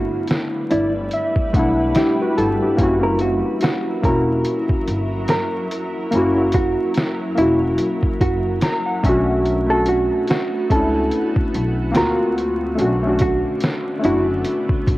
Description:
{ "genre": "lo-fi hip hop", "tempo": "72 BPM", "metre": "4/4", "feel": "swing 56% on 16ths", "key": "B minor", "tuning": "A4 = 437 Hz", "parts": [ { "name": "hollow-body jazz guitar", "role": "melody", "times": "0.0-14.3 s", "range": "E4 to A#4", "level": "-23 LUFS", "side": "right 1 dB", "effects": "low-pass filter, cassette tape, analog delay" }, { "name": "warbly lo-fi synth keys", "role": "accompaniment", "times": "0.0-15.0 s", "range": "A3 to A#5", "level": "-19 LUFS", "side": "left 1 dB", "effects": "chorus, cassette tape, low-pass filter" }, { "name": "granular cloud pad", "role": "sustained chords", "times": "0.0-15.0 s", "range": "D3 to B4", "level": "-29 LUFS", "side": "equal", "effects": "built-in reverb, low-pass filter, cassette tape" }, { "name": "upright bass", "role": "bass", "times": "0.0-15.0 s", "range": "E1 to D2", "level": "-25 LUFS", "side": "equal", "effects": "tube saturation" }, { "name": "lo-fi sampler-style drum kit", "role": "drums", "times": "0.3-15.0 s", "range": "hi-hat, kick drum, snare drum", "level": "-21 LUFS", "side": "equal", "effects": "none" } ], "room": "moderate spring reverb, RT60 2.2 s", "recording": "home recording on cassette, vinyl crackle", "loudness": "-16 LUFS", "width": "side -17 dB against mid", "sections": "0.0-15.0 A section", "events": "none", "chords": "0.0 G6; 2.8 F#7; 9.0 Bm9; 12.0 D7alt; 12.8 Bm7" }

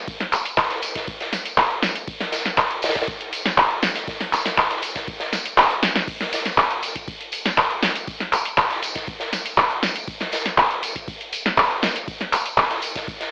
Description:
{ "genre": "house", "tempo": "120 BPM", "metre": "4/4", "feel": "straight", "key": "none", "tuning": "none", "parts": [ { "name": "big rock drum kit", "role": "drums", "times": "0.1-13.3 s", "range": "hi-hat, snare drum", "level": "-30 LUFS", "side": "equal", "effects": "sidechain pumping on hats, high-pass filter on hats, cassette tape, high-pass filter on snare, high-pass filter on room" }, { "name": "electro analog drum machine", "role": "drums", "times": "0.1-13.3 s", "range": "crash cymbal, handclaps, hi-hat, ride cymbal, snare drum", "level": "-23 LUFS", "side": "equal", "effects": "cassette tape" }, { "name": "electronic kick drum", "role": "drums", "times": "0.1-13.2 s", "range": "none", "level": "-37 LUFS", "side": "equal", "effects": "cassette tape" }, { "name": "tambourine", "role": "percussion", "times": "0.1-13.2 s", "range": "none", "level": "-35 LUFS", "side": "equal", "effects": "none" } ], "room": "wet studio reverb, RT60 0.6 s", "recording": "home recording on cassette, AM radio sound", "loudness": "-22 LUFS", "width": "mono", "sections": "0.0-13.3 A section", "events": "kick drops out 5.6-6.1", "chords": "none" }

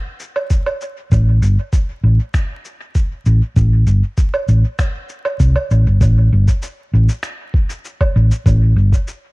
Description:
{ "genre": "ambient dub", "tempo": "98 BPM", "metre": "4/4", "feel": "straight", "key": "unclear", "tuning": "A4 = 437 Hz", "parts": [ { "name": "electronic cabasa, woodblock and finger snaps", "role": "drums", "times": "0.2-9.2 s", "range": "none", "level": "-25 LUFS", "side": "right 2 dB", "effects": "dub echo" }, { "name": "electronic kick drum", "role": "drums", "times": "0.5-9.0 s", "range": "none", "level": "-16 LUFS", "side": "equal", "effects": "none" }, { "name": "hollow-body short-scale fingered electric bass", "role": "bass", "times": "1.1-8.9 s", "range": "G1 to C2", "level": "-11 LUFS", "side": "equal", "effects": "none" } ], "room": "little or no reverb", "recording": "dark, warm production, vinyl crackle", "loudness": "-13 LUFS", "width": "side -25 dB against mid", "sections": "0.0-6.0 A section; 6.0-9.3 B section", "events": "none", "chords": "none" }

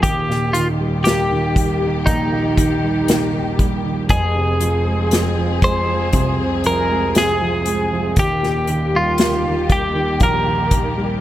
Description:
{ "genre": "pop ballad", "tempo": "59 BPM", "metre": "4/4", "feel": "straight", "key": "unclear", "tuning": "A4 = 442 Hz", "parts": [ { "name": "twelve-string electric guitar", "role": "melody", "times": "0.0-11.2 s", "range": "Eb4 to C5", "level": "-20 LUFS", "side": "equal", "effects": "warbly pitch drift" }, { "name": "dark concert grand piano", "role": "accompaniment", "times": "0.0-11.2 s", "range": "Eb1 to C4", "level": "-20 LUFS", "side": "right 1 dB", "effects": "none" }, { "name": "dark studio string section", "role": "sustained chords", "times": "0.0-11.2 s", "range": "Eb3 to Ab4", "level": "-26 LUFS", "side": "left 2 dB", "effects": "none" }, { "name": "unplugged drum kit", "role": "drums", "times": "0.0-10.9 s", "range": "hi-hat, kick drum, snare drum", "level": "-19 LUFS", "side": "equal", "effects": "none" } ], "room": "light reverb", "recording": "none", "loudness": "-15 LUFS", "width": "side -13 dB against mid", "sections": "0.0-11.2 A section", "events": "none", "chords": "0.0 Eb; 4.1 Fm; 8.2 Eb" }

